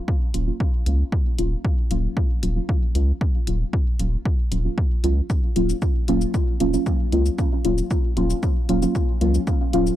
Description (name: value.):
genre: dub techno.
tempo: 115 BPM.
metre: 4/4.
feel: straight.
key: Eb minor.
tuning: A4 = 439 Hz.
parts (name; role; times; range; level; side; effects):
deep mellow chord stab; stabs; 0.0-9.9 s; Gb3 to F4; -24 LUFS; equal; chorus, phaser, sidechain pumping, dub echo.
electronic kick drum; drums; 0.1-9.6 s; none; -22 LUFS; equal; none.
round analog bass; bass; 0.3-9.9 s; Eb1 to Db2; -22 LUFS; equal; sidechain pumping.
electronic hi-hat and shaker; drums; 0.3-10.0 s; none; -35 LUFS; left 4 dB; none.
room: little or no reverb.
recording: dark, warm production.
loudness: -19 LUFS.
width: side -13 dB against mid.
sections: 0.0-10.0 A section.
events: filter sweep on synth stab 0.0-10.0.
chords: 0.0 Ebm7.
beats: 0.08 0.60 | 1.12 1.65 2.17 2.69 | 3.21 3.73 4.25 4.78 | 5.30 5.82 6.34 6.86 | 7.39 7.91 8.43 8.95 | 9.47.